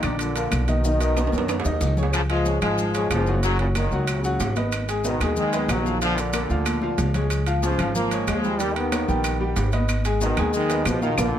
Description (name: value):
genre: latin, salsa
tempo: 186 BPM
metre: 4/4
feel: straight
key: unclear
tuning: A4 = 440 Hz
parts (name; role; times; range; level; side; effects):
- bright trombone section; melody; 0.0-11.4 s; Bb2 to Cb4; -25 LUFS; left 1 dB; none
- clear grand piano; accompaniment; 0.0-11.3 s; D3 to Ab5; -27 LUFS; left 1 dB; none
- upright bass; bass; 0.0-11.3 s; Gb1 to F#2; -25 LUFS; equal; none
- claves; percussion; 0.0-11.3 s; none; -32 LUFS; left 1 dB; none
- congas; percussion; 0.0-11.3 s; none; -32 LUFS; equal; none
- maracas; percussion; 0.0-11.3 s; none; -37 LUFS; left 4 dB; none
- timbales; percussion; 0.0-11.3 s; none; -31 LUFS; right 6 dB; none
room: light reverb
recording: close, detailed microphones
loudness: -20 LUFS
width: side -10 dB against mid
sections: 0.0-2.1 A section; 2.1-11.4 B section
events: drum fill 1.2-2.1, 6.7-7.3; band accent 11.2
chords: 0.2 Bb; 0.8 Bmaj7; 2.1 Db; 3.4 Gbadd9; 4.7 Abmadd9; 6.0 Bb; 7.3 Db; 8.6 Eb; 9.9 Abmadd9